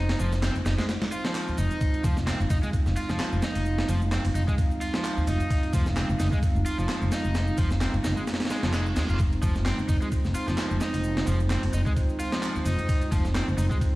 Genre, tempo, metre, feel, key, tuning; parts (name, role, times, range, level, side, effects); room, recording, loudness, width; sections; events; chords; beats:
breakbeat, breaks; 130 BPM; 4/4; swing 56% on 16ths; F minor; A4 = 440 Hz
dark analog pad; sustained chords; 0.0-14.0 s; Ab3 to F5; -32 LUFS; equal; chorus, sidechain pumping
crunchy overdriven guitar; riff; 0.0-13.8 s; F3 to F4; -33 LUFS; equal; tube saturation, dub echo
upright bass; bass; 0.0-13.9 s; F1 to F2; -26 LUFS; equal
breakbeat sampler-style drum kit; drums; 0.1-13.9 s; kick drum, ride cymbal, snare drum; -28 LUFS; equal; small room ambience
house drum kit; drums; 0.1-13.9 s; handclaps, ride cymbal, shaker; -40 LUFS; right 1 dB; small room ambience
reverse cymbal; sound effects; 8.6-9.2 s; -42 LUFS; right 3 dB
digital ambience; played on a big sound system in a bare room, stone room reverb, vinyl crackle; -23 LUFS; side -18 dB against mid
0.0-14.0 A section
reverse cymbal 8.6-9.2
0.0 Fm7
0.43 0.89 1.35 | 1.81 2.27 2.73 3.20 | 3.66 4.12 4.58 5.04 | 5.50 5.96 6.43 6.89 | 7.35 7.81 8.27 8.73 | 9.20 9.66 10.12 10.58 | 11.04 11.50 11.96 12.43 | 12.89 13.35 13.81